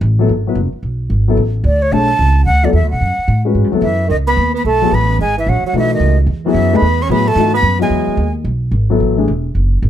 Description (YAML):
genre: jazz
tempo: 220 BPM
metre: 4/4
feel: swing 61% on 8ths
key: unclear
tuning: A4 = 436 Hz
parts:
  - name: upright bass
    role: bass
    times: 0.0-9.9 s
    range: E1 to A2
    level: -14 LUFS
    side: right 1 dB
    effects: none
  - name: warm concert grand piano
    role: accompaniment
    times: 0.2-9.3 s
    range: E3 to C#5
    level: -16 LUFS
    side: left 5 dB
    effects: none
  - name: breathy concert flute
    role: melody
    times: 1.7-8.3 s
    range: C#5 to C#6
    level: -17 LUFS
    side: right 1 dB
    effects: none
  - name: breathy tenor saxophone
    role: second line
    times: 3.8-8.3 s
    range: D#3 to C#4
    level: -19 LUFS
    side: right 6 dB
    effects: none
room: light reverb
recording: dark, warm production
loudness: -12 LUFS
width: side -10 dB against mid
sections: 0.0-9.9 A section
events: none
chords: 0.0 Bm9; 4.1 C#m9; 8.5 B7(no3)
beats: 0.02 0.29 0.56 | 0.83 1.11 1.38 1.65 | 1.92 2.19 2.47 2.74 | 3.01 3.28 3.56 3.83 | 4.10 4.37 4.64 4.92 | 5.19 5.46 5.74 6.01 | 6.28 6.55 6.83 7.10 | 7.37 7.64 7.92 8.19 | 8.46 8.74 9.01 9.29 | 9.56 9.84